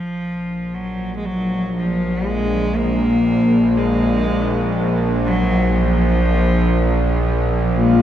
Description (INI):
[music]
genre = dark ambient drone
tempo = 60 BPM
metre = 4/4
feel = straight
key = unclear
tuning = A4 = 441 Hz
[part]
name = dark cello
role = melody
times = 0.0-8.0 s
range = F3 to Bb3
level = -19 LUFS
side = left 1 dB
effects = diffuse ambient delay
[part]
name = bowed-like drone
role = drone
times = 0.6-8.0 s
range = Bb1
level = -19 LUFS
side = right 1 dB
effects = built-in reverb
[part]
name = dark analog pad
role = sustained chords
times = 7.7-8.0 s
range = Bb3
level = -13 LUFS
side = left 4 dB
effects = wide subtle chorus
[part]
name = bubbling stepped-filter texture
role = texture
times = 7.8-8.0 s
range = F4 to F5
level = -21 LUFS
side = left 2 dB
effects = chorus, built-in reverb
[sound]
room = wet cathedral reverb, RT60 6.5 s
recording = none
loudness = -16 LUFS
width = side -10 dB against mid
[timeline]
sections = 0.0-8.0 A section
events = none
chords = 0.0 Bb5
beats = 0.73 1.75 2.76 | 3.77 4.77 5.76 6.76 | 7.76